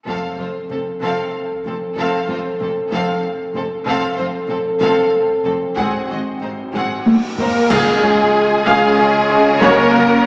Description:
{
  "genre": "cinematic, epic orchestral film score",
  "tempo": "63 BPM (dotted quarters)",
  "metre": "6/8",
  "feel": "straight",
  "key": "F major",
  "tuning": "A4 = 445 Hz",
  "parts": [
    { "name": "clear symphonic violin section", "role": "melody", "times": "0.1-10.3 s", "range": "Ab4 to Gb5", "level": "-24 LUFS", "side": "equal", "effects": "none" },
    { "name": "warm symphonic violin section", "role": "second line", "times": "0.1-10.3 s", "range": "C4 to Bb4", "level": "-24 LUFS", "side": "equal", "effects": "none" },
    { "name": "rich symphonic viola section", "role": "accompaniment", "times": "0.1-10.0 s", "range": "Bb3 to F5", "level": "-21 LUFS", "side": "equal", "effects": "none" },
    { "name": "dark French horn section", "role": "sustained chords", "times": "0.1-10.3 s", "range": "Ab3 to A4", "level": "-18 LUFS", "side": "equal", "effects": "none" },
    { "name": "rich studio double bass section", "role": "bass", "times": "0.1-10.0 s", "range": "F1 to Gb2", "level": "-28 LUFS", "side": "equal", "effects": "none" },
    { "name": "rich symphonic cello section", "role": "bass", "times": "0.1-10.3 s", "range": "F2 to Db3", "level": "-25 LUFS", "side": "equal", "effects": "none" },
    { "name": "taiko ensemble", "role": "drums", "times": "0.1-10.2 s", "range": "none", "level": "-19 LUFS", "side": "equal", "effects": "none" },
    { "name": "timpani", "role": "percussion", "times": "0.1-1.0, 7.7-8.6 s", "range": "F2 to Db3", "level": "-31 LUFS", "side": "equal", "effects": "none" },
    { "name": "cymbal swell, clash cymbals and concert bass drum", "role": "percussion", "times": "3.9-8.9 s", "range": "none", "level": "-28 LUFS", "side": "equal", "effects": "none" },
    { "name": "cymbal swell and sub drop", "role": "sound effects", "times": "7.0-9.6 s", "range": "none", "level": "-33 LUFS", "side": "equal", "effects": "none" },
    { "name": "mellow flute section", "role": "second line", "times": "7.4-10.3 s", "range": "Ab4 to Bb4", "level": "-19 LUFS", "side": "equal", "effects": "none" },
    { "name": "warm studio string section", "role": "sustained chords", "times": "7.7-10.3 s", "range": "Db4 to Ab5", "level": "-21 LUFS", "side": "equal", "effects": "none" }
  ],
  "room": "wet scoring stage reverb, RT60 2.0 s",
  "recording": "heard from further back in the room, small speaker sound",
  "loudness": "-14 LUFS",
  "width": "side -38 dB against mid",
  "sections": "0.1-7.7 A section; 7.7-10.3 B section",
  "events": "drum fill 6.7-7.7; cymbal swell 7.0-7.7; band accent 7.7-8.3; impact 7.7-9.6",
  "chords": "0.1 F; 5.8 Ab7; 7.7 Db; 9.6 Gb"
}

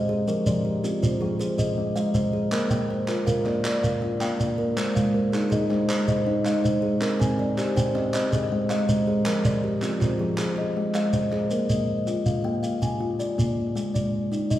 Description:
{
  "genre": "southern african traditional, mbira-style interlocking cycle",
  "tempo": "107 BPM (dotted quarters)",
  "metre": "12/8",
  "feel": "straight",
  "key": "Bb mixolydian",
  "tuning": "A4 = 440 Hz",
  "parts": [
    { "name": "kalimba", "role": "arpeggios", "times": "0.0-14.6 s", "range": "F3 to Ab5", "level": "-25 LUFS", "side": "left 1 dB", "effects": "tape echo" },
    { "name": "kalimba", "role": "arpeggios", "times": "0.0-11.9 s", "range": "F3 to G5", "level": "-28 LUFS", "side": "right 2 dB", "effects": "none" },
    { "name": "shekere", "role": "percussion", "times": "0.3-14.6 s", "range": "none", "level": "-28 LUFS", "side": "right 1 dB", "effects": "none" },
    { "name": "group handclap", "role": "percussion", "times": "2.5-11.4 s", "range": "none", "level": "-35 LUFS", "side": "right 1 dB", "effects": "none" }
  ],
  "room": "wet recital hall reverb, RT60 1.6 s",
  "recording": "heard from further back in the room",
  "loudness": "-22 LUFS",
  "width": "side -13 dB against mid",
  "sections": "0.0-11.5 A section; 11.5-14.6 B section",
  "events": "none",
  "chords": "0.3 Fm; 1.4 Ab; 2.5 Bb; 4.8 Ab; 7.0 Cm; 8.1 Ab; 9.3 Fm; 10.4 Ab; 11.5 Bb; 13.8 Ab5"
}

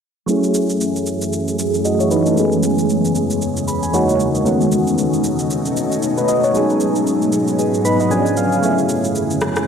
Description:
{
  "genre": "amapiano",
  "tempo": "115 BPM",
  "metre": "4/4",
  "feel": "swing 58% on 16ths",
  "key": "F# dorian",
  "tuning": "A4 = 440 Hz",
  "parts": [
    { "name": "soft electric-piano-like synth keys", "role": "accompaniment", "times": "0.3-9.7 s", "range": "D#3 to B5", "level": "-17 LUFS", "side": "equal", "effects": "chorus, phaser, low-pass filter" },
    { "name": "ethereal airy pad", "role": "sustained chords", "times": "0.8-9.7 s", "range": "E2 to G#4", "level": "-20 LUFS", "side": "equal", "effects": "ensemble chorus, built-in reverb, phaser, low-pass filter" },
    { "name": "electronic shaker and rim click", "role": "drums", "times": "0.3-9.7 s", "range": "none", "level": "-28 LUFS", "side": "right 1 dB", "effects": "overdrive" }
  ],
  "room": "wet lush hall reverb, RT60 2.0 s, digital ambience",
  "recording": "dreamy mix soaked in reverb",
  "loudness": "-15 LUFS",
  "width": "side -7 dB against mid",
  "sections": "0.3-9.7 A section",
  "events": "filter sweep 0.3-9.7; synth keys fill 3.4-4.5, 7.6-8.6",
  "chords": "0.3 F#m9; 2.4 E6; 3.9 F#13; 4.5 B9; 6.5 G#m7; 8.1 C#7b9; 8.6 F#m9"
}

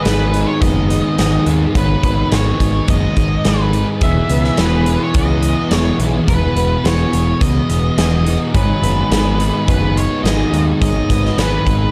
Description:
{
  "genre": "rock, shoegaze and dream pop",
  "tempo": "106 BPM",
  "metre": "4/4",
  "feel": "straight",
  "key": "unclear",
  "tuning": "A4 = 439 Hz",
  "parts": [
    { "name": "octave-fuzz lead guitar", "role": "melody", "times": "0.0-11.9 s", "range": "B4 to E5", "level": "-25 LUFS", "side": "equal", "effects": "distortion, slapback echo" },
    { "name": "fingerpicked twelve-string acoustic guitar", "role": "arpeggios", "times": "0.0-11.9 s", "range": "F#3 to G#4", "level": "-28 LUFS", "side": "equal", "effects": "lush chorus, slapback echo" },
    { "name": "biting overdriven guitar", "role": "riff", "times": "0.0-11.9 s", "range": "E2 to G#4", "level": "-24 LUFS", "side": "equal", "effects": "reverse reverb" },
    { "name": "thick fuzz guitar", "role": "riff", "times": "0.0-11.9 s", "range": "E2 to G#3", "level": "-21 LUFS", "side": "equal", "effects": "distortion, ensemble chorus" },
    { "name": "growling picked electric bass", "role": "bass", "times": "0.1-11.9 s", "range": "E1 to D#2", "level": "-20 LUFS", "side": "equal", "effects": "overdrive" },
    { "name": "huge arena drum kit", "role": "drums", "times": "0.1-11.8 s", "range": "hi-hat, kick drum, snare drum", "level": "-22 LUFS", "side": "equal", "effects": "none" }
  ],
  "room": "little or no reverb",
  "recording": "dark, warm production",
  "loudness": "-15 LUFS",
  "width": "mono",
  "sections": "0.0-11.9 A section",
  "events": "none",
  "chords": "0.0 G#m7; 4.0 Emaj7; 8.5 G#m7"
}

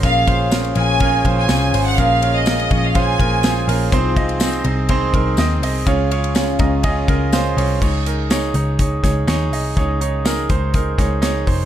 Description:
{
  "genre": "piano-driven pop",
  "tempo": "123 BPM",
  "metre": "4/4",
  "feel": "straight",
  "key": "unclear",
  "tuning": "A4 = 440 Hz",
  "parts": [
    { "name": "clear studio violin section", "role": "melody", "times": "0.0-3.7 s", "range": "Eb5 to Ab5", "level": "-19 LUFS", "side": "right 1 dB", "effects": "none" },
    { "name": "mellow French horn section", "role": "second line", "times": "0.0-7.5 s", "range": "Db3 to F4", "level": "-27 LUFS", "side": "left 4 dB", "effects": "none" },
    { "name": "clear concert grand piano", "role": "accompaniment", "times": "0.0-11.7 s", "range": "Bb2 to Bb5", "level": "-21 LUFS", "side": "right 3 dB", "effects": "none" },
    { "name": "vintage muted picked electric bass", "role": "bass", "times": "0.0-11.7 s", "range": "F1 to Eb2", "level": "-20 LUFS", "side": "left 1 dB", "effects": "none" },
    { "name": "modern studio drum kit", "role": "drums", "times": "0.0-11.6 s", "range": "crash cymbal, hi-hat, kick drum, ride cymbal, snare drum", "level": "-20 LUFS", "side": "equal", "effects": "none" },
    { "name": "tambourine", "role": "percussion", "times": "0.5-11.3 s", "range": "none", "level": "-32 LUFS", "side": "left 11 dB", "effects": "none" }
  ],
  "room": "light reverb",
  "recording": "dark, warm production",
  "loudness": "-15 LUFS",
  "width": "side -11 dB against mid",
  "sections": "0.0-7.8 A section; 7.8-11.7 B section",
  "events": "grand piano fill 6.4-7.8",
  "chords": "0.0 Bbm7; 3.9 Ab/C; 5.9 Db; 7.8 Dbsus2"
}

